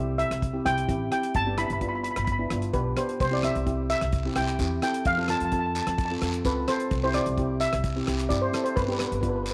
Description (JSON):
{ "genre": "calypso", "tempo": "130 BPM", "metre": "4/4", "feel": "straight", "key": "C major", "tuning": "A4 = 440 Hz", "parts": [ { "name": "steel pan", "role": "melody", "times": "0.0-9.5 s", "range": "B4 to B5", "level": "-30 LUFS", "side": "equal", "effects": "none" }, { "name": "steel pan", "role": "accompaniment", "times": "0.0-9.5 s", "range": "B3 to A4", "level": "-33 LUFS", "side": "equal", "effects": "none" }, { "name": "upright bass", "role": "bass", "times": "0.0-9.5 s", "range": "G1 to G2", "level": "-33 LUFS", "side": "equal", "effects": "none" }, { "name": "damped 70s drum kit", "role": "drums", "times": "0.2-9.5 s", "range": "hi-hat, kick drum, rim click", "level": "-35 LUFS", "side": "equal", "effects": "none" }, { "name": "guiro", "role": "percussion", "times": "3.2-9.5 s", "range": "none", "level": "-41 LUFS", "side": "equal", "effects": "none" } ], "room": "moderate echo chamber reverb, RT60 1.4 s, small room ambience", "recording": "none", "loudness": "-26 LUFS", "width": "mono", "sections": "0.0-9.5 A section", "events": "none", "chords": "0.0 C; 1.3 G; 3.2 C; 5.1 F; 6.9 C; 8.8 G", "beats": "0.42 0.89 | 1.35 1.81 2.28 2.74 | 3.21 3.67 4.13 4.59 | 5.06 5.52 5.99 6.45 | 6.91 7.38 7.84 8.30 | 8.76 9.23" }